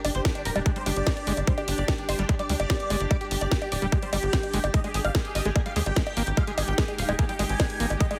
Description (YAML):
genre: psychedelic trance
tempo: 147 BPM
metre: 4/4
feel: straight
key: unclear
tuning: A4 = 440 Hz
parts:
  - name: dense compressed supersaw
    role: melody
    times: 0.0-8.2 s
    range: D4 to Ab5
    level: -35 LUFS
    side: equal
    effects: phaser, sidechain pumping, dub echo
  - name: bubbling stepped-filter texture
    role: sustained chords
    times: 0.0-8.2 s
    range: G4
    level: -38 LUFS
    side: equal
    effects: chorus, built-in reverb, sidechain pumping
  - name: tight sequencer bass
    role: bass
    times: 0.0-8.0 s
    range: D1 to Eb2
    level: -31 LUFS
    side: equal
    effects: none
  - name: drum and bass drum kit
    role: drums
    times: 0.0-8.2 s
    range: bongos, hi-hat, snare drum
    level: -33 LUFS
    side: equal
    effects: none
  - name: granular cloud pad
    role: texture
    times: 0.2-8.2 s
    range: Ab3 to Eb5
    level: -40 LUFS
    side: equal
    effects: none
  - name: overdriven acid bass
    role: riff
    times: 0.2-8.1 s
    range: G3 to G4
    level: -37 LUFS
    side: equal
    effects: none
  - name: electronic kick drum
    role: drums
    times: 0.2-8.1 s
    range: none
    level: -27 LUFS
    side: equal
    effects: none
room: light reverb, digital ambience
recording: heavily compressed radio sound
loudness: -26 LUFS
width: mono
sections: 0.0-8.2 A section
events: none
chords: 0.0 G5; 4.7 Ab5